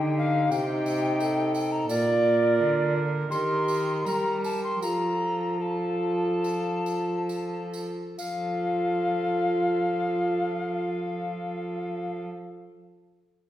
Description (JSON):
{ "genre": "classical, renaissance-style consort dance", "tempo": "66-88 BPM", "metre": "4/4", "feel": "straight", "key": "F mixolydian", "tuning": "A4 = 440 Hz", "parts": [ { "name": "mellow tenor recorder", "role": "melody", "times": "0.0-12.2 s", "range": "D5 to C6", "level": "-29 LUFS", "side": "left 1 dB", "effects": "none" }, { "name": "rich viola", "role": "second line", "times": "0.0-12.3 s", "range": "G4 to Bb4", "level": "-33 LUFS", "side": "right 1 dB", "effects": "none" }, { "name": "clear trombone", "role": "accompaniment", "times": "0.0-12.3 s", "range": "Eb4 to G4", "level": "-29 LUFS", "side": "equal", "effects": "none" }, { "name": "rich cello", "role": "bass", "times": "0.0-12.2 s", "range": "Bb2 to G3", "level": "-32 LUFS", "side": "right 1 dB", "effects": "none" }, { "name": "tambourine", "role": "percussion", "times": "0.5-8.6 s", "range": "none", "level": "-44 LUFS", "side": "right 4 dB", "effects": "none" } ], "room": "wet recital hall reverb, RT60 1.5 s", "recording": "heard from further back in the room", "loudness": "-24 LUFS", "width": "side -12 dB against mid", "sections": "0.0-8.2 A section; 8.2-11.8 B section", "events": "slowing down 0.5-8.2", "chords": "0.0 Eb; 0.5 Cm; 1.9 Bb; 3.3 Eb; 4.8 F" }